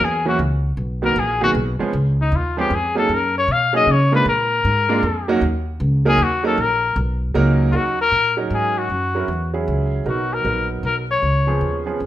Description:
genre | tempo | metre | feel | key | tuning
jazz, small-group swing and bop | 155 BPM | 3/4 | swing 64% on 8ths | Eb minor | A4 = 440 Hz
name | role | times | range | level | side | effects
warm trumpet | melody | 0.0-11.8 s | Eb4 to F5 | -19 LUFS | left 3 dB | none
upright bass | bass | 0.0-12.1 s | A#1 to Db3 | -21 LUFS | equal | none
clear concert grand piano | accompaniment | 0.3-12.0 s | D#3 to Bb4 | -22 LUFS | right 4 dB | none
room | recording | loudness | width
moderate large studio reverb, RT60 0.8 s | none | -16 LUFS | side -13 dB against mid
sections
0.0-7.7 A section; 7.7-12.1 B section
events
trumpet solo 0.0-7.7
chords
0.0 Gb7; 0.8 Bmaj7; 1.9 Db; 3.1 Gbadd9; 4.3 Bb7(no3); 5.4 Ebm7; 8.9 Gb7(no3); 10.1 Bmaj7; 11.2 Db7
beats
0.01 0.39 | 0.78 1.17 1.55 | 1.94 2.32 2.71 | 3.10 3.48 3.87 | 4.26 4.64 5.03 | 5.42 5.80 6.19 | 6.57 6.96 7.35 | 7.73 8.12 8.51 | 8.89 9.28 9.67 | 10.06 10.44 10.83 | 11.22 11.60 11.99

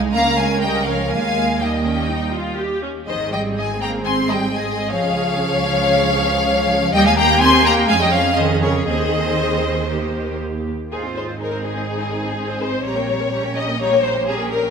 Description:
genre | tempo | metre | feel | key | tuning
quick classical-period movement for string orchestra | 124 BPM | 4/4 | rubato | Ab major | A4 = 441 Hz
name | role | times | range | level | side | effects
clear symphonic viola section | accompaniment | 0.0-14.7 s | G3 to C5 | -24 LUFS | right 2 dB | none
clear studio double bass section | bass | 0.0-14.7 s | Ab1 to F2 | -25 LUFS | right 4 dB | none
rich chamber cello section | bass | 0.0-14.7 s | Db3 to F4 | -24 LUFS | right 2 dB | none
rich studio violin section | melody | 0.1-14.7 s | C5 to C6 | -21 LUFS | left 3 dB | none
rich chamber violin section | second line | 0.2-14.7 s | Ab4 to Ab5 | -21 LUFS | left 3 dB | none
room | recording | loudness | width
wet scoring stage reverb, RT60 1.9 s | none | -16 LUFS | side -6 dB against mid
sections
0.0-10.9 A section; 10.9-14.7 B section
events
none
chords
0.2 Bbm/Db; 1.1 Eb; 3.1 Ab; 5.0 Db; 6.9 Eb; 7.9 Db/F; 8.9 Ab/Eb; 9.9 Eb; 10.9 Ab; 12.9 Gdim/Bb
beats
0.15 0.63 | 1.12 1.61 2.11 2.60 | 3.10 3.59 4.07 4.55 | 5.04 5.52 5.99 6.47 | 6.94 7.42 7.89 8.38 | 8.89 9.40 9.91 10.42 | 10.93 11.42 11.90 12.38 | 12.86 13.34 13.81 14.28

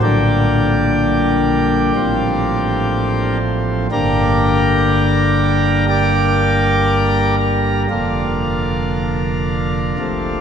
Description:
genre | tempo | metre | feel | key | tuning
classical, chorale-style piece for pipe organ | 57-63 BPM | 4/4 | rubato | Bb major | A4 = 440 Hz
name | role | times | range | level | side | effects
pipe organ, principal chorus | solo | 0.0-10.4 s | F1 to D5 | -14 LUFS | equal | none
room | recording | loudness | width
wet cathedral reverb, RT60 4.4 s | none | -14 LUFS | side -8 dB against mid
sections
0.0-10.4 A section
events
none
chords
0.0 Gm/Bb; 2.0 F/A; 3.9 Gm; 7.9 Bb/F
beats
| 0.03 1.00 1.96 2.92 | 3.91 4.89 5.89 6.89 | 7.91 8.94 9.99

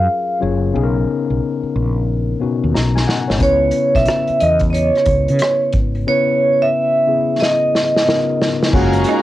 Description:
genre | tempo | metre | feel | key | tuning
R&B, neo-soul | 90 BPM | 4/4 | swing 63% on 16ths | unclear | A4 = 440 Hz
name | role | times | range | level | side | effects
vibraphone with medium hard mallets | melody | 0.0-8.4 s | C#5 to E#5 | -16 LUFS | right 2 dB | cassette tape
barky tine electric piano | accompaniment | 0.0-9.2 s | B2 to A#5 | -20 LUFS | left 6 dB | none
mellow fretless electric bass | bass | 0.0-9.0 s | F#1 to C#3 | -18 LUFS | equal | none
unplugged drum kit | drums | 2.8-9.2 s | crash cymbal, hi-hat, kick drum, rim click, snare drum | -19 LUFS | equal | cassette tape
warm studio string section | sustained chords | 8.7-9.2 s | G#4 to A#5 | -21 LUFS | left 1 dB | none
clear horn section | stabs | 8.7-9.2 s | C#3 to F#4 | -19 LUFS | right 7 dB | none
electric guitar through a small old amp | second line | 9.1-9.2 s | D#4 | -19 LUFS | right 8 dB | analog chorus
room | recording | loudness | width
light reverb | home recording on cassette | -14 LUFS | side -14 dB against mid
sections
0.0-8.7 A section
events
drum fill 2.7-3.4, 7.4-8.7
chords
0.0 F#maj9; 0.7 Bmaj9; 3.4 C#m7; 8.1 C#13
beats
0.07 | 0.73 1.40 2.07 2.73 | 3.40 4.07 4.74 5.40 | 6.07 6.74 7.40 8.07 | 8.73

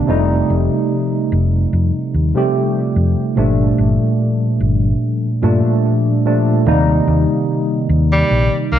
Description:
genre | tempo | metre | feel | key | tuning
vaporwave | 73 BPM | 4/4 | swing 54% on 16ths | unclear | A4 = 440 Hz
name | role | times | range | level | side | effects
tine electric piano | accompaniment | 0.0-8.8 s | Bb2 to G4 | -15 LUFS | equal | slow stereo tremolo, wide subtle chorus, analog delay
hollow-body short-scale fingered electric bass | bass | 0.1-8.8 s | F1 to G2 | -16 LUFS | equal | none
edgy tenor saxophone | melody | 8.1-8.8 s | G3 to Bb3 | -16 LUFS | equal | vintage 12-bit sampler grit
room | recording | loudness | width
moderate recital hall reverb, RT60 1.7 s, small room ambience | dark, warm production, cassette tape | -13 LUFS | side -10 dB against mid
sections
0.0-6.7 A section; 6.7-8.8 B section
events
none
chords
0.1 F9; 3.4 Gm9; 6.7 Eb6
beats
| 0.09 0.91 1.73 2.55 | 3.38 4.20 5.02 5.84 | 6.66 7.49 8.31

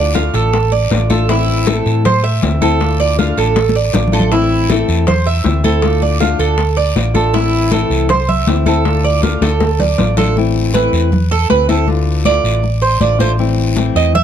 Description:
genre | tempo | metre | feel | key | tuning
latin, Cuban son and guajira | 159 BPM | 4/4 | straight | A minor | A4 = 441 Hz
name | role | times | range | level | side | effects
nylon-string guitar | accompaniment | 0.0-14.2 s | D3 to F4 | -18 LUFS | left 8 dB | none
Cuban tres | arpeggios | 0.0-14.2 s | E4 to F5 | -16 LUFS | right 7 dB | none
hollow-body short-scale fingered electric bass | bass | 0.0-14.2 s | A1 to A2 | -16 LUFS | equal | none
guiro | percussion | 0.1-14.2 s | none | -28 LUFS | left 5 dB | none
bongos | percussion | 0.2-10.3 s | none | -24 LUFS | left 7 dB | none
congas | percussion | 0.2-14.2 s | none | -19 LUFS | left 2 dB | none
room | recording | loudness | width
little or no reverb | close, detailed microphones | -11 LUFS | side -9 dB against mid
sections
0.0-10.4 A section; 10.4-14.2 B section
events
drum fill 3.6-4.3, 9.2-10.4; Cuban tres solo 10.4-14.2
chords
0.0 Dm; 1.3 Am; 2.8 Dm; 4.3 Am; 5.8 Dm; 7.3 Am; 8.9 Dm; 10.4 Am; 11.9 Dm; 13.4 Am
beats
0.15 0.53 0.91 | 1.29 1.67 2.05 2.43 | 2.81 3.19 3.56 3.94 | 4.32 4.70 5.08 5.46 | 5.83 6.21 6.59 6.97 | 7.34 7.72 8.10 8.48 | 8.86 9.23 9.61 9.99 | 10.37 10.75 11.12 11.50 | 11.88 12.26 12.64 13.01 | 13.39 13.77 14.15

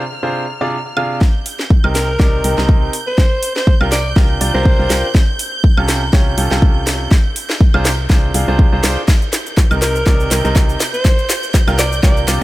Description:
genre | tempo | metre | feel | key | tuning
piano house | 122 BPM | 4/4 | swing 55% on 16ths | C minor | A4 = 440 Hz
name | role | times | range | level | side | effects
rich studio violin section | sustained chords | 0.0-12.4 s | F6 to G6 | -26 LUFS | right 2 dB | sidechain pumping
bright baby grand piano | riff | 0.2-12.4 s | C3 to F5 | -20 LUFS | right 1 dB | sidechain pumping, low-pass filter, tape echo
house drum kit | drums | 1.0-12.4 s | hi-hat, shaker, snare drum, woodblock | -20 LUFS | equal | high-pass filter on perc, high-pass filter on snare, high-pass filter on hats
electronic kick drum | drums | 1.2-12.1 s | none | -12 LUFS | equal | none
organ-like FM bass | bass | 1.8-12.4 s | C2 | -19 LUFS | equal | sidechain pumping
growling alto saxophone | melody | 1.9-5.2, 9.8-12.2 s | Bb4 to D5 | -21 LUFS | equal | tape echo
room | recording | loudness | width
small room ambience | none | -12 LUFS | side -17 dB against mid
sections
0.0-1.2 A section; 1.2-12.4 B section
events
build-up 1.2-12.4; drum fill 1.2-12.4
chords
0.0 Dm7b5/C; 1.2 Cm7; 2.9 Gm7/C; 5.1 A7alt; 7.1 Dm7b5; 9.1 Cm7; 10.8 Gm7/C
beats
0.23 0.72 | 1.21 1.71 2.20 2.69 | 3.18 3.67 4.16 4.66 | 5.15 5.64 6.13 6.62 | 7.12 7.61 8.10 8.59 | 9.08 9.57 10.06 10.56 | 11.05 11.54 12.03

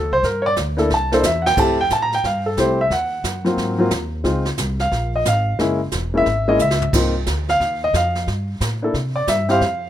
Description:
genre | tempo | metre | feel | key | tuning
jazz piano trio | 179 BPM | 4/4 | swing 64% on 8ths | unclear | A4 = 440 Hz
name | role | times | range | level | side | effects
warm grand piano | melody | 0.0-9.9 s | Gb3 to Bb5 | -18 LUFS | equal | none
upright bass | bass | 0.0-9.9 s | Fb1 to C3 | -23 LUFS | equal | none
jazz brush drum kit | drums | 0.2-9.9 s | brushed snare drum, crash cymbal, hi-hat, kick drum, snare drum, toms | -25 LUFS | right 1 dB | none
room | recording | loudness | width
studio ambience | rough home demo mix | -17 LUFS | side -11 dB against mid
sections
0.0-1.6 A section; 1.6-9.9 A section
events
grand piano solo 0.0-9.9; drum fill 0.9-1.6, 6.6-6.9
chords
0.2 Gm; 0.9 C6; 1.6 Fmaj9; 2.9 Ebm; 3.6 Ab13; 4.3 Dbmaj7; 5.6 Gb9; 6.9 Cmadd9; 8.3 Gsus2; 8.9 C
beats
| 0.23 0.57 0.90 1.24 | 1.57 1.91 2.24 2.58 | 2.91 3.25 3.58 3.92 | 4.25 4.59 4.92 5.26 | 5.59 5.92 6.26 6.59 | 6.93 7.26 7.60 7.93 | 8.27 8.60 8.94 9.27 | 9.61

